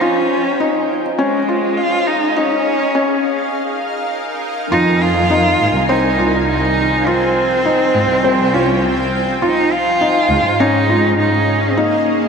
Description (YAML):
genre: piano and strings electronica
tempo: 102 BPM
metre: 4/4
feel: straight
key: F minor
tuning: A4 = 440 Hz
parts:
  - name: rich cello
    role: melody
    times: 0.0-12.3 s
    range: Ab3 to F4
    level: -17 LUFS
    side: right 1 dB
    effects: ping-pong delay
  - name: granular cloud pad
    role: sustained chords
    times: 0.0-12.3 s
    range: Db4 to Ab5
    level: -21 LUFS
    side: equal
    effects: built-in reverb
  - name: felt-muted upright piano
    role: riff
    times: 0.0-12.2 s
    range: C4 to F4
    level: -18 LUFS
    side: left 1 dB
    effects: ping-pong delay
  - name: dark symphonic cello section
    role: bass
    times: 4.7-11.7 s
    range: C2 to Ab2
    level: -20 LUFS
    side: equal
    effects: none
room: wet plate reverb, RT60 2.7 s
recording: dreamy mix soaked in reverb, high-pass filter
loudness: -13 LUFS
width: side -6 dB against mid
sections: 0.0-4.7 A section; 4.7-12.3 B section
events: build-up 0.0-4.7; filter sweep on ambient pad 0.0-4.7; filter sweep 0.0-4.7; break 3.5-4.7; drop 4.7-12.3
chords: 0.0 Dbmaj7; 2.4 Eb7sus4; 4.7 Fm7; 9.4 Dbmaj7; 11.8 Eb7sus4